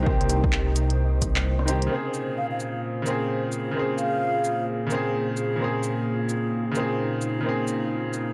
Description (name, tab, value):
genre	future garage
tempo	130 BPM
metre	4/4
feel	swing 62% on 16ths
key	Bb dorian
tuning	A4 = 440 Hz
part	bright upright piano	accompaniment	0.0-8.3 s	Db3 to Ab4	-30 LUFS	equal	sidechain pumping, analog delay
part	warbly tape-like pad	sustained chords	0.0-8.3 s	Bb2 to C5	-32 LUFS	equal	chorus, built-in reverb, sidechain pumping
part	dark detuned saw bass	bass	0.0-1.9 s	C2	-26 LUFS	equal	tube saturation, sidechain pumping
part	wind-like tuned noise texture	texture	0.0-8.3 s	Eb4 to F5	-41 LUFS	equal	built-in reverb
part	electronic kick drum	drums	0.1-1.3 s	none	-28 LUFS	equal	overdrive, vintage 12-bit sampler grit
part	organic electronic drum kit	drums	0.2-8.3 s	cabasa, handclaps, hi-hat, rim click	-34 LUFS	equal	vintage 12-bit sampler grit
part	baroque flute	melody	2.4-4.6 s	F5	-31 LUFS	equal	analog delay
room	light reverb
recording	dry, gritty hardware recording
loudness	-25 LUFS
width	mono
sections	0.0-1.9 A section; 1.9-8.3 B section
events	none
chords	0.0 Cm7; 1.9 Bbm9